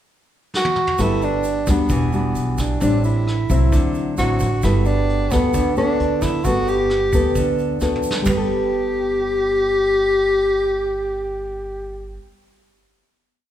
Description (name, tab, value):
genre	bossa nova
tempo	132 BPM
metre	4/4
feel	straight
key	G major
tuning	A4 = 440 Hz
part	vintage brush drum kit	drums	0.5-8.4 s	hi-hat, kick drum, rim click, snare drum, toms	-26 LUFS	right 1 dB	none
part	breathy tenor saxophone	melody	0.6-12.2 s	B3 to G4	-20 LUFS	equal	none
part	nylon-string guitar	accompaniment	1.0-12.3 s	A2 to A4	-22 LUFS	left 1 dB	none
part	upright bass	bass	1.0-12.2 s	E1 to D2	-23 LUFS	equal	none
part	egg shaker	percussion	1.0-8.4 s	none	-37 LUFS	right 3 dB	none
room	moderate recital hall reverb, RT60 1.5 s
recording	recorded in a church or concert hall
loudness	-17 LUFS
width	side -11 dB against mid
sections	0.0-1.0 pickup bar; 1.0-8.3 A section; 8.3-11.9 final chord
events	drum fill 0.5-1.0, 7.8-8.3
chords	0.0 N.C.; 1.0 Gmaj9; 1.9 Em9; 2.8 Am7; 3.7 D9; 4.6 Gmaj9; 8.3 Gadd9